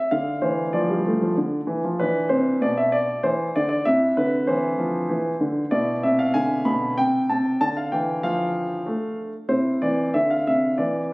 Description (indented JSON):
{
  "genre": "classical-period piano sonatina",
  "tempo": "96 BPM",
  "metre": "3/4",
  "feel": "rubato",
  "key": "unclear",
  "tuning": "A4 = 440 Hz",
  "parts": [
    { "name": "warm baby grand piano", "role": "solo", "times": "0.0-11.1 s", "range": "B2 to B5", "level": "-20 LUFS", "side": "equal", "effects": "none" }
  ],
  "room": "moderate recital hall reverb, RT60 1.4 s",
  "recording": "recorded on a phone in the room, studio reverb, compression",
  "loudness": "-20 LUFS",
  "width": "side -24 dB against mid",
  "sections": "0.0-11.1 A section",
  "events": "none",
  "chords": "0.1 Dm; 2.0 E5; 3.9 Cmaj9; 5.7 E5/B; 7.0 N.C.; 7.6 Dm; 9.5 Cadd9"
}